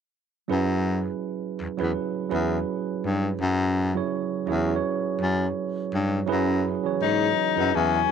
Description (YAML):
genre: R&B, neo-soul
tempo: 83 BPM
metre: 4/4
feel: swing 57% on 16ths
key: unclear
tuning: A4 = 443 Hz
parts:
  - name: tine electric piano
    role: accompaniment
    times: 0.5-8.1 s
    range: E3 to C#5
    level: -27 LUFS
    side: right 8 dB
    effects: overdrive
  - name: breathy baritone saxophone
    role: bass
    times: 0.5-8.0 s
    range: E2 to G#2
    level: -25 LUFS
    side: left 3 dB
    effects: none
  - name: breathy tenor saxophone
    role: melody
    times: 7.0-8.1 s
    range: C#4 to D#4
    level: -22 LUFS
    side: left 14 dB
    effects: none
room: moderate echo chamber reverb, RT60 2.0 s, small room ambience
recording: 1960s-style stereo with parts hard left and right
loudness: -23 LUFS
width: side -7 dB against mid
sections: 0.5-6.3 A section; 6.3-8.1 B section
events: none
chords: 0.5 F#9sus4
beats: | 0.49 1.22 1.94 2.66 | 3.38 4.11 4.83 5.55 | 6.28 7.00 7.72